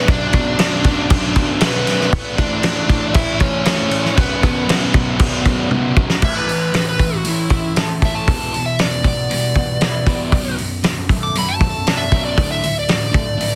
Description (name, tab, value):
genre	quiet-loud alternative rock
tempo	117 BPM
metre	4/4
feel	straight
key	B minor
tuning	A4 = 440 Hz
part	smooth overdriven lead guitar	melody	0.0-13.6 s	B3 to D6	-24 LUFS	equal	slapback echo
part	fuzz guitar	riff	0.0-6.2 s	B1 to A3	-28 LUFS	equal	none
part	thick fuzz guitar	riff	0.0-13.6 s	B1 to A3	-24 LUFS	equal	distortion
part	fuzz fingered electric bass	bass	0.1-13.2 s	B0 to E2	-18 LUFS	equal	overdrive
part	loose indie drum kit	drums	0.1-13.5 s	crash cymbal, hi-hat, kick drum, snare drum, toms	-19 LUFS	equal	soft clipping on kick
part	electric guitar through a small old amp	arpeggios	6.2-13.6 s	B1 to A4	-31 LUFS	equal	analog chorus
room	small room ambience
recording	dense, heavily limited modern master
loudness	-17 LUFS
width	mono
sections	0.0-6.2 A section; 6.2-13.6 B section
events	drum fill 5.7-6.2; lead electric guitar solo 6.2-13.6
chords	0.0 Bm; 2.1 Aadd9; 4.2 Bm; 6.2 A; 8.3 Em7; 10.3 Bm7; 12.4 Dsus2